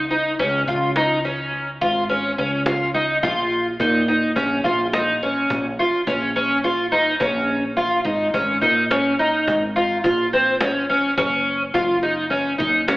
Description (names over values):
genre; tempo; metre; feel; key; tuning
progressive instrumental, band music in an uneven meter; 106 BPM; 7/4; straight; Bb minor; A4 = 440 Hz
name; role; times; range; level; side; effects
fingerpicked twelve-string acoustic guitar; arpeggios; 0.0-13.0 s; C4 to F4; -18 LUFS; equal; lush chorus, slapback echo
woody fretless electric bass; bass; 0.0-13.0 s; Gb1 to Bb2; -27 LUFS; equal; wide subtle chorus
cajon; drums; 0.1-13.0 s; none; -28 LUFS; equal; slapback echo
room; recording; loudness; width
moderate lush hall reverb, RT60 2.7 s; live gig heard through the venue's PA, club reverb, AM radio sound; -18 LUFS; side -20 dB against mid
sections
0.0-7.2 A section; 7.2-13.0 B section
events
kick and snare drop out 6.6-7.2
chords
0.0 Db; 3.2 Bbm; 7.2 Bbm7; 11.2 Gb5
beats
0.39 0.95 1.52 2.09 2.66 | 3.23 3.80 4.36 4.93 5.50 6.07 6.63 | 7.20 7.77 8.34 8.91 9.47 10.04 10.61 | 11.18 11.75 12.32 12.88